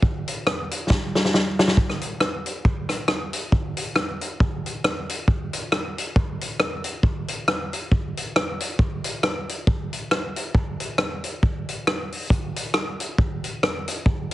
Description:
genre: ska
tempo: 137 BPM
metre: 4/4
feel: swing 57% on 8ths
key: none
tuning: none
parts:
  - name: vintage drum kit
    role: drums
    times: 0.0-14.3 s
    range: hi-hat, kick drum, rim click, snare drum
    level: -21 LUFS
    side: equal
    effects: none
room: light reverb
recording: heavily compressed radio sound, multiband compression, nothing above 10.9 kHz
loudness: -22 LUFS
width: side -15 dB against mid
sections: 0.0-1.8 A section; 1.8-14.3 B section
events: drum fill 0.9-1.8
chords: none

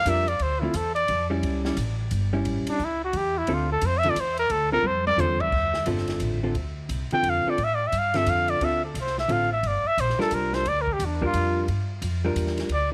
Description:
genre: jazz, small-group swing and bop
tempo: 176 BPM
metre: 3/4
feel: swing 63% on 8ths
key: D minor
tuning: A4 = 439 Hz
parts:
  - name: breathy trumpet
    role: melody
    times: 0.0-12.9 s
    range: D4 to G5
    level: -27 LUFS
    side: equal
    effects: tape echo
  - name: upright bass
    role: bass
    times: 0.0-12.9 s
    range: G1 to A2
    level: -31 LUFS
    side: equal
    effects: none
  - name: vintage hollow-body jazz guitar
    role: accompaniment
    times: 0.1-12.7 s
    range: D3 to Bb4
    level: -30 LUFS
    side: equal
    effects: none
  - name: swinging big-band drum kit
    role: drums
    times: 0.1-12.8 s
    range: crash cymbal, hi-hat, kick drum, ride cymbal, snare drum, toms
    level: -38 LUFS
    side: equal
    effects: none
room: small room ambience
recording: none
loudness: -25 LUFS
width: mono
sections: 0.0-5.5 A section; 5.5-12.9 A section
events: trumpet solo 0.0-12.9; drum fill 4.8-5.5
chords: 0.4 Dm; 1.4 A7; 3.5 Dm7; 9.6 Gm7

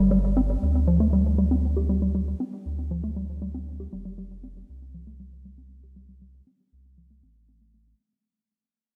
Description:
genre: IDM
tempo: 118 BPM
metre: 4/4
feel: straight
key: unclear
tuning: A4 = 440 Hz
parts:
  - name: deep acid bass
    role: arpeggios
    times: 0.0-7.9 s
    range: F3 to G4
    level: -28 LUFS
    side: equal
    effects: delay
  - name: warm sub bass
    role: bass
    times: 0.0-7.9 s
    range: F1 to D2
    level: -29 LUFS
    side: equal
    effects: none
room: moderate lush hall reverb, RT60 2.9 s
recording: dreamy mix soaked in reverb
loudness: -25 LUFS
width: mono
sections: 0.0-8.0 A section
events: fade-out 0.0-8.0; filter sweep on acid bass 0.0-8.0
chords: 0.0 G5; 3.9 Fadd9

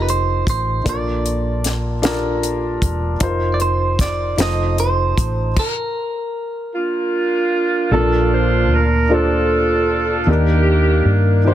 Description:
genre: slow gospel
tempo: 51 BPM (dotted quarters)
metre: 6/8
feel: straight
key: Bb major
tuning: A4 = 440 Hz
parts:
  - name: clean electric guitar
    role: melody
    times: 0.0-7.1 s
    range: Bb4 to Eb5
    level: -22 LUFS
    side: right 3 dB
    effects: none
  - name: dark upright piano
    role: accompaniment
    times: 0.0-11.5 s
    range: Bb2 to A5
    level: -21 LUFS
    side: equal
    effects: none
  - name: hollow-body short-scale fingered electric bass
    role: bass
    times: 0.0-11.5 s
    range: E1 to G2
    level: -19 LUFS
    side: equal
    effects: none
  - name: tight funk drum kit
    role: drums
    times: 0.1-5.7 s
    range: crash cymbal, hi-hat, kick drum, snare drum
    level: -21 LUFS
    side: left 1 dB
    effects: soft clipping on snare
  - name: dark saxophone section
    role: melody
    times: 6.7-11.5 s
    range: Bb3 to C5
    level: -17 LUFS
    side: right 2 dB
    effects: none
room: light reverb, small room ambience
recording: dense, heavily limited modern master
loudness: -15 LUFS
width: side -12 dB against mid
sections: 0.0-7.9 A section; 7.9-11.5 B section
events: stop 5.6-7.9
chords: 0.0 F9sus4; 0.9 Bbmaj7; 3.2 F7sus4; 4.4 F7; 5.6 Bb; 7.9 Bbmaj7; 10.3 Ebmaj7

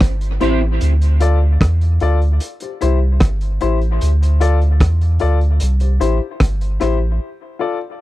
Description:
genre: dub reggae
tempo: 75 BPM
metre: 4/4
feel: straight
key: D minor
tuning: A4 = 440 Hz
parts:
  - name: warm sub bass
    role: bass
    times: 0.0-7.2 s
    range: G1 to E2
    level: -14 LUFS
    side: equal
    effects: none
  - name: crunchy breakbeat drum kit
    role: drums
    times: 0.0-7.0 s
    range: hi-hat, kick drum, rim click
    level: -16 LUFS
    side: equal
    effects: none
  - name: clean electric guitar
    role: accompaniment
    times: 0.4-0.6 s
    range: C4 to C5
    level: -24 LUFS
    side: right 5 dB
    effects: ensemble chorus, dub echo
  - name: warm grand piano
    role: stabs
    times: 0.4-7.8 s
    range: E4 to D5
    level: -22 LUFS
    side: left 7 dB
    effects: dub echo
room: little or no reverb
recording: dry, close 1970s-style studio recording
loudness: -14 LUFS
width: side -16 dB against mid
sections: 0.0-8.0 A section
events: filter sweep 0.0-8.0; break 7.2-8.0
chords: 0.0 C; 0.8 Dm; 2.4 C; 4.0 Dm; 5.6 C; 7.2 Dm

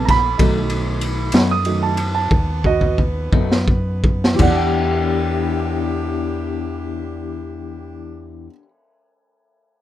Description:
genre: slow blues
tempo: 54-65 BPM (dotted quarters)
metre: 12/8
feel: straight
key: E minor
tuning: A4 = 440 Hz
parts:
  - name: dark baby grand piano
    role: accompaniment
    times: 0.0-8.5 s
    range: D#3 to D#6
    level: -21 LUFS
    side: right 6 dB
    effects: none
  - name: mellow saxophone section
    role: sustained chords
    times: 0.0-8.5 s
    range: A3 to G5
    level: -32 LUFS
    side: equal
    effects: none
  - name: deep dub fingered electric bass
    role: bass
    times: 0.0-8.5 s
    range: A#1 to F#2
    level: -23 LUFS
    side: equal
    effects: none
  - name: raw garage drum kit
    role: drums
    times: 0.1-4.6 s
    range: crash cymbal, kick drum, ride cymbal, snare drum, toms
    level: -19 LUFS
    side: equal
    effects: none
  - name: electric guitar through a small old amp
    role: accompaniment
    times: 0.4-8.7 s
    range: B2 to G4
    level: -23 LUFS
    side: left 7 dB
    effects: harmonic tremolo
room: little or no reverb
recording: rough home demo mix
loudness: -16 LUFS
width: side -12 dB against mid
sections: 0.0-4.4 A section; 4.4-8.8 B section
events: slowing down 0.0-4.4; grand piano solo 0.0-4.4; drum fill 2.3-4.4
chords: 0.4 B7; 4.4 Em7

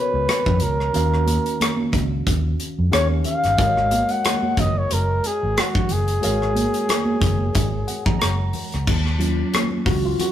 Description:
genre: lush 1970s-style soul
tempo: 91 BPM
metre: 4/4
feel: swing 54% on 16ths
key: Eb minor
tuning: A4 = 441 Hz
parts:
  - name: warm flugelhorn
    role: melody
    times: 0.0-8.6 s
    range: Gb4 to Gb5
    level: -22 LUFS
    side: left 1 dB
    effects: none
  - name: tine electric piano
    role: accompaniment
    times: 0.0-10.3 s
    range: Db3 to Bb5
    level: -27 LUFS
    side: equal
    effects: medium stereo tremolo
  - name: vintage muted fingered electric bass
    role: bass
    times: 0.1-10.1 s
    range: Gb1 to F2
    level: -22 LUFS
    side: equal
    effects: none
  - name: modern studio drum kit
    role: drums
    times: 0.3-10.3 s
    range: crash cymbal, hi-hat, kick drum, rim click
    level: -23 LUFS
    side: left 1 dB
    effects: none
  - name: congas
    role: percussion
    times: 0.3-10.3 s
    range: none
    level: -28 LUFS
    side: right 3 dB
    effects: none
room: light reverb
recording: rough rehearsal-room recording, warm saturation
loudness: -18 LUFS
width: side -11 dB against mid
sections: 0.0-8.9 A section; 8.9-10.3 B section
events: tine electric piano fill 7.6-8.9; tine electric piano solo 8.9-10.3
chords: 0.0 Db7sus4; 0.9 Ebm9; 2.9 Eb9; 3.6 Ab13sus4; 8.9 Ebm7

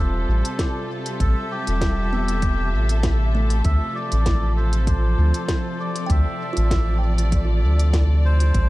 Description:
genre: ambient dub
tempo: 98 BPM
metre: 4/4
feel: swing 54% on 16ths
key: unclear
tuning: A4 = 440 Hz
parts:
  - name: melodica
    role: melody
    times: 0.0-8.7 s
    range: G4 to E5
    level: -30 LUFS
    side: equal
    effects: tape echo
  - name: dark studio string section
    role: sustained chords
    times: 0.0-8.7 s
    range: C3 to E5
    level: -28 LUFS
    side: equal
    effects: none
  - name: soft dub sub bass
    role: bass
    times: 0.0-8.7 s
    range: E1 to D2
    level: -19 LUFS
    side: equal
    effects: none
  - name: organic electronic drum kit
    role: drums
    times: 0.5-8.7 s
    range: hi-hat, snare drum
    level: -32 LUFS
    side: equal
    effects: small room ambience, dub echo
  - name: electronic kick drum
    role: drums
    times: 0.6-8.7 s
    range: none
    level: -23 LUFS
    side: equal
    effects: small room ambience
  - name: kalimba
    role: arpeggios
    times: 2.1-8.7 s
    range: A3 to G5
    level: -34 LUFS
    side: right 2 dB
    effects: low-pass filter, tape echo
room: small room reverb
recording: none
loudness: -18 LUFS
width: side -18 dB against mid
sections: 0.0-8.7 A section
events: filter sweep on kalimba 0.0-8.7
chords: 0.0 Am7; 3.6 Dm9

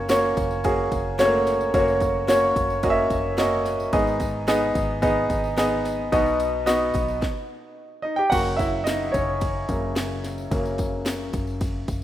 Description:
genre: piano-driven pop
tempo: 110 BPM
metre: 4/4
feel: straight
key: unclear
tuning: A4 = 439 Hz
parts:
  - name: clear concert grand piano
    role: accompaniment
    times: 0.0-12.0 s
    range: G#2 to G5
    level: -21 LUFS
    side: equal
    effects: none
  - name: vintage muted fingered electric bass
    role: bass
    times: 0.0-12.0 s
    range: F#1 to B1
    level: -32 LUFS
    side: equal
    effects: none
  - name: house drum kit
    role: drums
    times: 0.1-12.0 s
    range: crash cymbal, kick drum, ride cymbal, snare drum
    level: -29 LUFS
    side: equal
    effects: none
  - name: tambourine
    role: percussion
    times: 0.1-12.0 s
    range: none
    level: -44 LUFS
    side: left 5 dB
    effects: none
room: moderate lush hall reverb, RT60 2.5 s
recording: rough home demo mix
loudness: -20 LUFS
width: side -12 dB against mid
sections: 0.0-8.3 A section; 8.3-12.0 A section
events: stop 7.2-8.3; grand piano solo 8.3-12.0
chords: 0.0 F#; 3.9 G#m; 6.1 B; 7.2 D#; 8.3 F#

